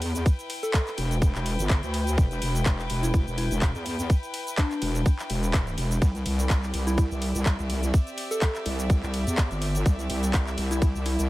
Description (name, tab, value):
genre	bass house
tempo	125 BPM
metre	4/4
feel	swing 55% on 16ths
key	E minor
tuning	A4 = 441 Hz
part	wobble bass	bass	0.0-11.3 s	E1 to E2	-27 LUFS	equal	chorus, overdrive, sidechain pumping
part	garage drum kit	drums	0.0-11.3 s	handclaps, hi-hat, ride cymbal, shaker	-33 LUFS	equal	none
part	rich chamber string section	texture	0.0-11.3 s	C4 to G5	-35 LUFS	left 1 dB	sidechain pumping
part	electronic kick drum	drums	0.3-10.9 s	none	-21 LUFS	equal	none
part	soft struck synth lead	melody	0.6-11.2 s	D4 to A4	-33 LUFS	left 1 dB	chorus, tape echo
room	digital ambience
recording	none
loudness	-23 LUFS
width	side -17 dB against mid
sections	0.0-11.3 A section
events	none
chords	0.0 Em; 6.0 C